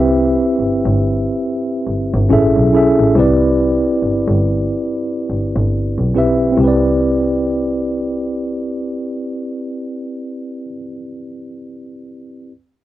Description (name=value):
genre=R&B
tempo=70 BPM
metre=4/4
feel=swing 62% on 16ths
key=C major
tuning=A4 = 441 Hz
part: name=mellow tine electric piano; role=accompaniment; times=0.0-12.5 s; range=C4 to E5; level=-16 LUFS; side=equal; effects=fast stereo tremolo
part: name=clear double bass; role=bass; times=0.0-10.7 s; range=G1 to C2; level=-18 LUFS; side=equal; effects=tube saturation
room=light reverb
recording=dry, close 1970s-style studio recording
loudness=-14 LUFS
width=side -14 dB against mid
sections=0.0-6.6 A section; 6.6-10.0 B section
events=none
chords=0.0 Cmaj7; 2.3 Amaj7; 3.2 Cmaj9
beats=0.58 1.44 2.30 | 3.15 4.01 4.87 5.72 | 6.58 7.44 8.30 9.15